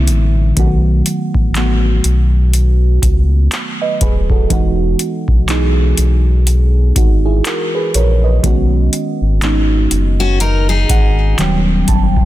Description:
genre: contemporary R&B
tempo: 61 BPM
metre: 4/4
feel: swing 58% on 16ths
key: B major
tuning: A4 = 440 Hz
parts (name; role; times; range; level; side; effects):
- mellow FM electric piano; accompaniment; 0.0-12.2 s; D3 to A5; -18 LUFS; right 2 dB; chorus, phaser
- sub bass with octave; bass; 0.0-12.2 s; D#1 to C#2; -13 LUFS; equal; none
- booming analog drum machine; drums; 0.1-12.2 s; handclaps, hi-hat, kick drum; -16 LUFS; equal; none
- picked steel-string acoustic guitar; arpeggios; 10.2-11.4 s; C#4 to A#4; -19 LUFS; left 4 dB; ping-pong delay
room: digital ambience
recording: dense, heavily limited modern master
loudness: -11 LUFS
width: side -15 dB against mid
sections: 0.0-12.2 A section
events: FM electric piano fill 10.4-12.2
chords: 0.0 C9; 0.6 B7; 4.5 Emaj9; 8.4 B69; 11.4 D#7alt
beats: | 0.57 1.55 2.54 3.52 | 4.50 5.49 6.47 7.45 | 8.44 9.42 10.40 11.39

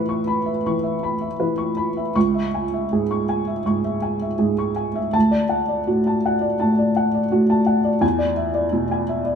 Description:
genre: neoclassical minimalist piano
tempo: 78-85 BPM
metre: 4/4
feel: rubato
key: unclear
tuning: A4 = 439 Hz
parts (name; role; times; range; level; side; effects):
- felt-muted upright piano; solo; 0.0-9.4 s; C#2 to C#6; -18 LUFS; equal; none
room: moderate stone room reverb, RT60 1.3 s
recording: band playing live in one room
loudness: -18 LUFS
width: side -7 dB against mid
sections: 0.0-9.4 A section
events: none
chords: 0.0 Aadd9; 2.2 C#m; 5.1 D; 8.0 E7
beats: 0.64 1.40 | 2.15 2.91 3.67 4.42 | 5.15 5.88 6.60 7.32 | 8.03 8.74

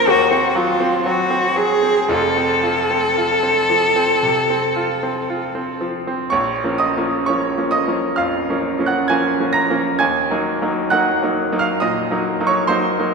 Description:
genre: classical, romantic duo for cello and grand piano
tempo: 55-69 BPM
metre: 4/4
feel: rubato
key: Bb minor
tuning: A4 = 440 Hz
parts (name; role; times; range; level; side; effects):
- rich cello; melody; 0.0-5.8 s; F4 to Bb4; -16 LUFS; left 1 dB; none
- bright grand piano; accompaniment; 0.0-13.1 s; F1 to Bb6; -18 LUFS; right 1 dB; none
room: wet concert hall reverb, RT60 2.1 s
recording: minimal, uncompressed stereo recording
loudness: -16 LUFS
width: side -4 dB against mid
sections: 0.0-6.3 A section; 6.3-13.1 B section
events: none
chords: 0.1 Cdim/Eb; 2.1 F; 6.3 Bbm; 10.0 Ebm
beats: 0.07 1.04 | 2.10 3.18 4.24 5.29 | 6.32 7.27 8.19 9.10 | 10.00 10.92 11.81 12.69

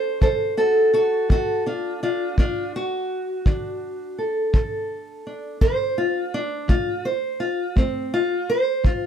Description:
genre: acoustic country blues, solo or duo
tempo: 56 BPM (dotted quarters)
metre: 12/8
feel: straight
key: unclear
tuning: A4 = 440 Hz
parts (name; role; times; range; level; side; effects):
- fingerpicked steel-string acoustic guitar; melody; 0.0-9.1 s; D2 to C5; -22 LUFS; equal; none
- kick drum; drums; 0.2-9.0 s; none; -20 LUFS; equal; none
room: moderate booth ambience, RT60 0.2 s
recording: dark, warm production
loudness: -20 LUFS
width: side -8 dB against mid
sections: 0.0-9.1 A section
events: steel-string acoustic guitar solo 0.0-9.1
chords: 0.0 D; 6.7 N.C.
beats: 0.22 1.30 | 2.38 3.46 4.54 5.62 | 6.70 7.77 8.85

